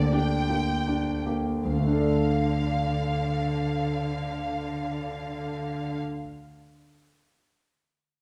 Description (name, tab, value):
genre	classical, romantic movement for piano and orchestra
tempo	79 BPM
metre	3/4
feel	rubato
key	D minor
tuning	A4 = 440 Hz
part	clear concert grand piano	melody	0.0-6.3 s	D2 to D5	-29 LUFS	equal	none
part	rich studio violin section	melody	0.0-6.0 s	D5 to G5	-36 LUFS	equal	none
part	rich studio cello section	bass	1.7-6.0 s	D3	-33 LUFS	equal	none
room	wet recital hall reverb, RT60 1.6 s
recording	recorded in a church or concert hall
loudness	-27 LUFS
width	mono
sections	0.0-1.7 A section; 1.7-6.2 B section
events	slowing down 0.0-1.7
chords	0.0 Gm/D; 1.7 Dm